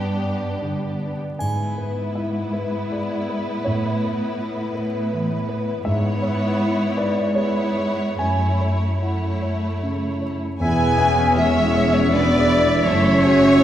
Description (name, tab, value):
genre	cinematic, emotional film score for orchestra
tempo	69-83 BPM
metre	3/4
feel	rubato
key	unclear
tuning	A4 = 440 Hz
part	rich studio violin section	melody	0.0-13.6 s	F#4 to C#5	-32 LUFS	left 1 dB	none
part	warm studio violin section	second line	0.0-13.6 s	D4 to G#5	-24 LUFS	left 1 dB	none
part	rich studio viola section	accompaniment	0.0-13.6 s	G#3 to F#4	-28 LUFS	right 1 dB	none
part	warm concert grand piano	accompaniment	0.0-13.6 s	E2 to G#5	-25 LUFS	equal	none
part	rich studio cello section	bass	0.0-13.6 s	E2 to A2	-25 LUFS	equal	none
part	triangle	percussion	1.4-2.9 s	none	-46 LUFS	left 2 dB	none
part	clear oboe	second line	10.6-13.6 s	E5	-25 LUFS	right 2 dB	none
part	dark clarinet	second line	10.6-13.6 s	A3 to B3	-27 LUFS	equal	none
part	dark French horn section	sustained chords	10.6-13.6 s	C#4 to G#4	-20 LUFS	equal	none
part	rich studio double bass section	bass	10.6-13.6 s	E1 to F#1	-25 LUFS	right 1 dB	none
room	wet scoring stage reverb, RT60 1.8 s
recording	heard from further back in the room, vinyl crackle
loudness	-18 LUFS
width	side -11 dB against mid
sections	0.0-10.6 A section; 10.6-13.6 A section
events	none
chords	0.0 G; 1.4 E/G#; 3.7 Aadd9; 5.8 C#m7/G#; 8.2 F#m7; 10.6 E; 12.9 F#m7